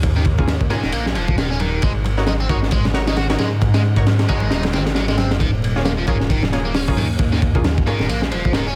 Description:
breakbeat, breaks; 134 BPM; 4/4; swing 58% on 16ths; Eb minor; A4 = 440 Hz
phased detuned saw bass; bass; 0.0-8.8 s; Eb1 to Ab2; -23 LUFS; equal; phaser
crunchy breakbeat drum kit; drums; 0.0-8.8 s; hi-hat, kick drum, ride cymbal, snare drum; -22 LUFS; equal
congas; percussion; 0.0-8.5 s; -32 LUFS; equal
biting overdriven guitar; riff; 0.2-8.8 s; Eb3 to Gb4; -28 LUFS; equal; delay
orchestra-hit-like synth stab; stabs; 0.4-8.0 s; Bb3 to Db5; -29 LUFS; equal; built-in reverb, delay
noise sweep; sound effects; 4.1-5.4 s; -38 LUFS; equal
little or no reverb; -18 LUFS; mono
0.0-8.8 A section
0.0 Eb9sus4; 1.8 Ab9sus4; 5.4 Eb9sus4
| 0.03 0.48 0.93 1.38 | 1.82 2.27 2.72 3.17 | 3.61 4.06 4.51 4.96 | 5.40 5.85 6.30 6.75 | 7.20 7.64 8.09 8.54

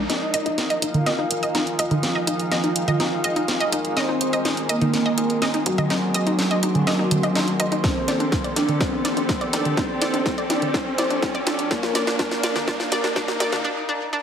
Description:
melodic techno; 124 BPM; 4/4; straight; A4 = 440 Hz
warm studio string section; sustained chords; 0.0-13.6 s; F3 to A4; -31 LUFS; equal; sidechain pumping, low-pass filter
analog pluck; arpeggios; 0.0-14.2 s; D4 to Eb5; -27 LUFS; equal; chorus, sidechain pumping, digital delay
tight sequencer bass; bass; 0.0-13.6 s; Eb1 to Bb2; -36 LUFS; equal
riser; sound effects; 0.0-13.6 s; -33 LUFS; equal
warbly tape-like pad; texture; 0.0-13.6 s; F4 to Eb6; -32 LUFS; equal; chorus, built-in reverb, sidechain pumping
expressive synth lead; melody; 0.1-13.6 s; Gb3 to F4; -26 LUFS; right 1 dB; wide subtle chorus, sidechain pumping, tape echo
airy dreamy lead; second line; 0.1-13.6 s; Gb4 to F5; -30 LUFS; equal; chorus, sidechain pumping, digital delay
overtone-sweeping drone; drone; 0.7-13.6 s; Eb3 to Bb3; -36 LUFS; equal; chorus, built-in reverb, sidechain pumping
house drum kit; drums; 0.1-13.6 s; congas, hi-hat, snare drum; -25 LUFS; right 1 dB; overdrive
electronic kick drum; drums; 7.8-13.3 s; -26 LUFS; equal; overdrive
moderate digital room reverb, RT60 1.2 s, digital ambience; high-pass filter; -19 LUFS; side -8 dB against mid
0.1-14.2 A section
build-up 0.1-14.2; drum fill 0.1-13.6; riser 0.1-13.6; filter sweep on synth arpeggio sound 0.1-14.2; filter sweep on analog synth lead 0.1-14.2; filter sweep on string section 0.1-14.2; break 13.6-14.2
0.1 Ebsus2; 4.0 Ab; 7.8 Fadd9; 11.7 Bb
| 0.10 0.58 1.06 1.55 | 2.03 2.52 3.00 3.48 | 3.97 4.45 4.93 5.42 | 5.90 6.39 6.87 7.35 | 7.84 8.32 8.81 9.29 | 9.77 10.26 10.74 11.22 | 11.71 12.19 12.68 13.16 | 13.64 14.13

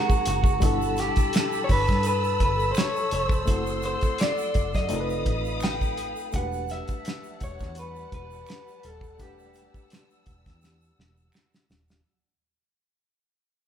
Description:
R&B, neo-soul; 84 BPM; 4/4; swing 54% on 16ths; A4 = 440 Hz
electric guitar through a small old amp; melody; 0.0-10.6 s; F#4 to G5; -28 LUFS; equal; spring reverb
barky reed electric piano; accompaniment; 0.0-12.1 s; B2 to F#5; -34 LUFS; left 4 dB; overdrive, fast tremolo
dark studio string section; sustained chords; 0.0-12.0 s; G3 to E6; -34 LUFS; left 1 dB
cloth-damped thuddy drum kit; drums; 0.1-12.0 s; hi-hat, kick drum, snare drum; -25 LUFS; equal
egg shaker and finger snaps; percussion; 0.1-12.0 s; -42 LUFS; right 3 dB
vintage muted fingered electric bass; bass; 0.3-12.0 s; D#1 to G2; -31 LUFS; right 1 dB
moderate large studio reverb, RT60 1.3 s; band playing live in one room; -22 LUFS; side -9 dB against mid
0.0-12.0 A section
fade-out 0.0-12.0; drum fill 10.6-12.0
0.0 G#9; 0.6 G69; 3.5 F#m7b5; 4.9 F7#11; 6.3 Em11
| 0.62 1.33 2.05 2.76 | 3.48 4.19 4.90 5.62 | 6.33 7.05 7.76 8.47 | 9.19 9.90 10.62 11.33

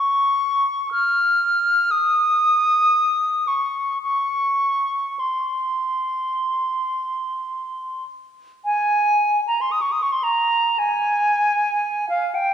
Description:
classical, free, expressive piece for unaccompanied flute; 44-61 BPM; 4/4; rubato; A4 = 440 Hz
concert flute; solo; 0.0-12.5 s; F5 to F6; -18 LUFS; equal
wet scoring stage reverb, RT60 2.0 s; heard from further back in the room; -18 LUFS; side -9 dB against mid
0.0-8.6 A section; 8.6-12.5 B section
0.94 1.93 2.94 | 4.03 5.19 6.33 7.43 | 8.64 9.71 10.78 11.83

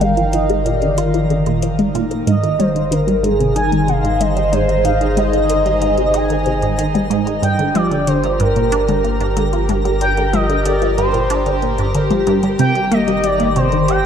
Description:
ambient, sequencer-driven space music; 93 BPM; 4/4; straight; G phrygian; A4 = 438 Hz
expressive synth lead; melody; 0.0-14.1 s; Ab4 to Ab5; -19 LUFS; right 1 dB; analog chorus, shimmer reverb, tape echo
phased analog pad; sustained chords; 0.0-14.1 s; Eb3 to F5; -21 LUFS; equal; phaser, chorus, tremolo, shimmer reverb
resonant blip pluck; riff; 0.0-14.0 s; G2 to G4; -19 LUFS; right 1 dB; phaser, tape echo
warm sub bass; bass; 0.0-14.1 s; G1; -22 LUFS; equal
soft vintage rhythm box; percussion; 0.0-14.0 s; hi-hat, toms; -24 LUFS; left 4 dB; tape echo
twinkling granular texture; texture; 0.0-14.1 s; Bb4 to Bb5; -33 LUFS; right 1 dB; built-in reverb, shimmer reverb
wet plate reverb, RT60 2.6 s; echo-heavy mix; -14 LUFS; side -8 dB against mid
0.0-14.1 A section
fade-in on synth texture 0.0-14.1
0.0 Bb/G; 2.3 Ab/G; 7.4 Gm; 12.6 Cm/G
0.34 0.98 1.63 | 2.27 2.92 3.56 4.21 | 4.85 5.50 6.14 6.79 | 7.43 8.08 8.72 9.37 | 10.01 10.66 11.30 11.95 | 12.59 13.24 13.88

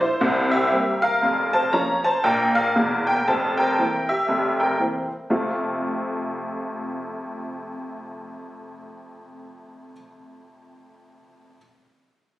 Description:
jazz, stride piano; 118 BPM; 4/4; swing 61% on 8ths; F major; A4 = 440 Hz
honky-tonk upright piano; solo; 0.0-11.6 s; E1 to Bb5; -21 LUFS; equal
light reverb; recorded on a phone in the room, studio reverb, compression; -20 LUFS; side -16 dB against mid
0.0-5.3 A section; 5.3-9.4 B section
0.2 C7; 1.2 Bbm/F; 3.3 C7/F; 5.3 F
0.21 0.72 | 1.23 1.74 2.24 2.75 | 3.26 3.77 4.28 4.78 | 5.29 5.80 6.31 6.82 | 7.33 7.83 8.34 8.85

